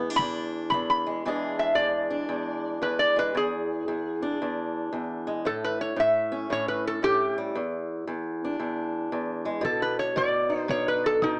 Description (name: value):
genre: acoustic country blues, solo or duo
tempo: 114 BPM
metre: 4/4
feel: swing 63% on 8ths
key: E mixolydian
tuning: A4 = 440 Hz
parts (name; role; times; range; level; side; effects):
- fingerpicked swing-style acoustic guitar; accompaniment; 0.0-11.4 s; E2 to G#4; -29 LUFS; equal; none
- metal-body resonator slide guitar; melody; 0.2-11.4 s; D#4 to B5; -24 LUFS; equal; none
- kick drum; drums; 0.2-0.9, 9.6-11.4 s; none; -38 LUFS; equal; none
room: light reverb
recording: small speaker sound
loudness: -24 LUFS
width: side -37 dB against mid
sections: 0.0-1.2 A section; 1.2-11.4 A section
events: resonator guitar played with a steel bar solo 0.0-11.4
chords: 0.0 E7; 5.5 A; 7.6 E7(no3); 9.6 B